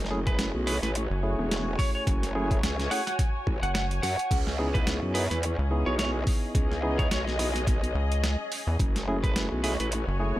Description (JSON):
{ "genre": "glitch hop", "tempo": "107 BPM", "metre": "4/4", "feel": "swing 57% on 16ths", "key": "F# dorian", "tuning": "A4 = 441 Hz", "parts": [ { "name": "growl bass", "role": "bass", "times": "0.0-10.4 s", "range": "E1 to F#2", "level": "-29 LUFS", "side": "equal", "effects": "chorus, tube saturation" }, { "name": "boom bap sampler-style drum kit", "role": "drums", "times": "0.0-10.0 s", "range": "crash cymbal, hi-hat, snare drum", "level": "-33 LUFS", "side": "right 1 dB", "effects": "overdrive" }, { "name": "muted studio string section", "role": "texture", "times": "0.0-10.4 s", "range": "C#4 to G#5", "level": "-36 LUFS", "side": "left 1 dB", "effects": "sidechain pumping" }, { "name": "tine electric piano", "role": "stabs", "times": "0.1-10.4 s", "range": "A3 to G#4", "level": "-33 LUFS", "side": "equal", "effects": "sidechain pumping, digital delay" }, { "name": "lightly driven lead guitar", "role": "melody", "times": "0.3-9.9 s", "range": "B4 to F#5", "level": "-34 LUFS", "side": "right 1 dB", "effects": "digital delay" }, { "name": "electronic kick drum", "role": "drums", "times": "0.3-9.3 s", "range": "none", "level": "-26 LUFS", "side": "equal", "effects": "overdrive" }, { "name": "rubbery square bass", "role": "bass", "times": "1.1-10.3 s", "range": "F#1 to E2", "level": "-27 LUFS", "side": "equal", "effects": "none" } ], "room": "little or no reverb", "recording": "none", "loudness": "-25 LUFS", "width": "side -15 dB against mid", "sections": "0.0-10.4 A section", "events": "none", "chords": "0.0 F#m7; 4.3 C#m7; 8.8 F#m7", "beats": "0.39 0.95 1.51 | 2.07 2.63 3.19 3.75 | 4.31 4.87 5.43 5.99 | 6.55 7.11 7.67 8.23 | 8.80 9.36 9.92" }